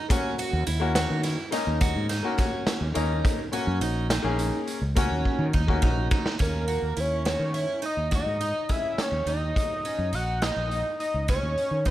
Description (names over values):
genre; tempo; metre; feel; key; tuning
progressive instrumental, band music in an uneven meter; 209 BPM (eighths); 11/8; straight; Eb phrygian; A4 = 439 Hz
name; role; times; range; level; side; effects
picked twelve-string acoustic guitar; arpeggios; 0.0-11.9 s; Db4 to Gb4; -33 LUFS; right 6 dB; none
clear concert grand piano; accompaniment; 0.1-6.2 s; Bb3 to Ab4; -29 LUFS; left 4 dB; none
raw garage drum kit; drums; 0.1-11.9 s; hi-hat, kick drum, snare drum; -28 LUFS; equal; none
fretless electric bass; bass; 0.5-11.9 s; Bb1 to Eb3; -28 LUFS; equal; none
fat analog lead; melody; 6.4-11.9 s; Bb4 to Gb5; -28 LUFS; equal; plate reverb, tape echo
room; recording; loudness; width
light reverb; none; -24 LUFS; side -14 dB against mid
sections
0.0-6.4 A section; 6.4-11.9 B section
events
drum fill 5.2-6.4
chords
0.0 Ebm7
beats
| 0.10 0.38 0.67 0.96 1.24 1.53 1.81 2.10 2.39 2.67 2.96 | 3.25 3.53 3.82 4.10 4.39 4.68 4.96 5.25 5.54 5.82 6.11 | 6.40 6.68 6.97 7.26 7.54 7.83 8.12 8.41 8.69 8.98 9.27 | 9.56 9.84 10.13 10.42 10.71 10.99 11.28 11.57 11.86